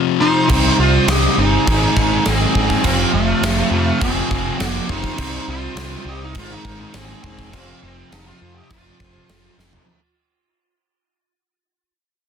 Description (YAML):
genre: hard rock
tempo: 102 BPM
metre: 4/4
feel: straight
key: unclear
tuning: A4 = 445 Hz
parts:
  - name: sludgy distorted guitar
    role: riff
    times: 0.0-9.9 s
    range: F2 to C4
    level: -24 LUFS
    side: left 12 dB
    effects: overdrive
  - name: smooth overdriven lead guitar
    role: melody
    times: 0.2-9.5 s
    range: A3 to G4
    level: -21 LUFS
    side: equal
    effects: tape echo
  - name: octave-fuzz lead guitar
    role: second line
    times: 0.2-9.5 s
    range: F4 to Eb5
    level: -27 LUFS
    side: right 3 dB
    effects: distortion, plate reverb
  - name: overdriven tonewheel organ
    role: sustained chords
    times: 0.5-9.9 s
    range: Eb4 to A5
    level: -34 LUFS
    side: equal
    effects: none
  - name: distorted electric guitar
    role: riff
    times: 0.5-9.9 s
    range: F2 to C4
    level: -26 LUFS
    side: equal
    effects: overdrive
  - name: overdriven semi-hollow guitar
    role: riff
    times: 0.5-9.9 s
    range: F2 to C4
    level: -25 LUFS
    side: right 11 dB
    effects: none
  - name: growling picked electric bass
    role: bass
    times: 0.5-9.8 s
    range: E1 to F2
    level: -22 LUFS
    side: equal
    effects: overdrive
  - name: gated 80s drum kit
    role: drums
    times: 0.5-9.9 s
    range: crash cymbal, kick drum, snare drum, toms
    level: -22 LUFS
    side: right 1 dB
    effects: soft clipping on snare
room: light reverb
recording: dense, heavily limited modern master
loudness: -14 LUFS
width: side -7 dB against mid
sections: 0.0-9.9 A section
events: fade-out 0.0-9.9; drum fill 9.6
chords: 0.5 Cm; 1.7 Ab; 2.8 F; 4.0 Fm; 5.2 Cm; 6.4 Ab; 7.5 F; 8.7 Fm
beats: | 0.50 1.08 1.67 2.25 | 2.84 3.43 4.01 4.60 | 5.19 5.77 6.36 6.95 | 7.53 8.12 8.70 9.29